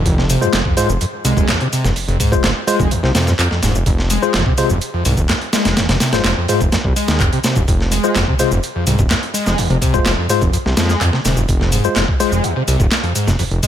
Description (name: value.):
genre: breakbeat, breaks.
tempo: 126 BPM.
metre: 4/4.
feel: straight.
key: unclear.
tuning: A4 = 438 Hz.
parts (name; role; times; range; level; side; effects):
screaming distorted acid line; riff; 0.0-13.7 s; Eb2 to Ab3; -19 LUFS; equal; distortion, analog chorus, vintage 12-bit sampler grit, dub echo.
fat analog bass; bass; 0.0-13.6 s; Eb1 to F2; -18 LUFS; equal; none.
breakbeat sampler-style drum kit; drums; 0.1-13.7 s; hi-hat, kick drum, snare drum; -18 LUFS; equal; none.
house drum kit; drums; 0.1-13.7 s; handclaps, hi-hat, shaker; -23 LUFS; left 1 dB; none.
tine electric piano; stabs; 0.4-12.3 s; Ab3 to C5; -21 LUFS; left 3 dB; overdrive, medium stereo tremolo, dub echo.
room: little or no reverb.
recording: none.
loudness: -13 LUFS.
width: side -10 dB against mid.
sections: 0.0-13.7 A section.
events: none.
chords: 0.0 Fm.